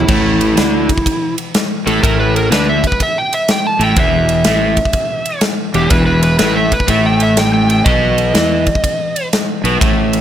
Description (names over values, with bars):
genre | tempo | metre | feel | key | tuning
blues rock power trio and southern rock | 124 BPM | 4/4 | swing 66% on 8ths | unclear | A4 = 436 Hz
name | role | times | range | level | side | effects
overdriven slide guitar | melody | 0.0-9.3 s | E4 to A5 | -17 LUFS | right 1 dB | none
overdriven semi-hollow guitar | riff | 0.0-10.2 s | E2 to E4 | -15 LUFS | equal | none
fuzz fingered electric bass | bass | 0.0-10.2 s | E1 to E2 | -18 LUFS | equal | overdrive
big rock drum kit | drums | 0.0-10.2 s | crash cymbal, kick drum, ride cymbal, snare drum, toms | -16 LUFS | left 1 dB | none
room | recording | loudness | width
light reverb | none | -11 LUFS | side -10 dB against mid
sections
0.0-10.2 A section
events
none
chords
0.1 Asus4; 4.0 Esus4; 7.9 B